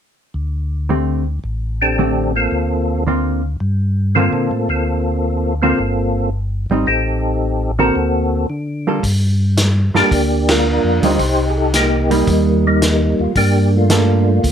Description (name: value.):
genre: soul jazz organ trio.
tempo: 111 BPM.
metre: 4/4.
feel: swing 69% on 8ths.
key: G minor.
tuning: A4 = 440 Hz.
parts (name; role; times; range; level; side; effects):
mellow tonewheel organ; bass; 0.3-14.5 s; G1 to D3; -18 LUFS; equal; slow rotary speaker.
hollow-body jazz guitar; accompaniment; 0.9-14.2 s; D3 to Bb4; -18 LUFS; right 2 dB; none.
percussive tonewheel organ; melody; 1.8-14.5 s; G3 to C5; -16 LUFS; equal; slow rotary speaker, chorus vibrato.
vintage drum kit; drums; 9.0-14.5 s; hi-hat, kick drum, ride cymbal, snare drum; -21 LUFS; left 1 dB; none.
room: light reverb.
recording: none.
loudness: -14 LUFS.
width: side -8 dB against mid.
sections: 0.3-9.0 A section; 9.0-14.5 B section.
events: band accent 10.4.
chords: 0.3 D7sus4; 2.5 Gm11/D; 6.9 Am7b5; 8.0 D7b13; 9.0 Gm7; 11.2 Cm7; 13.4 Gm9.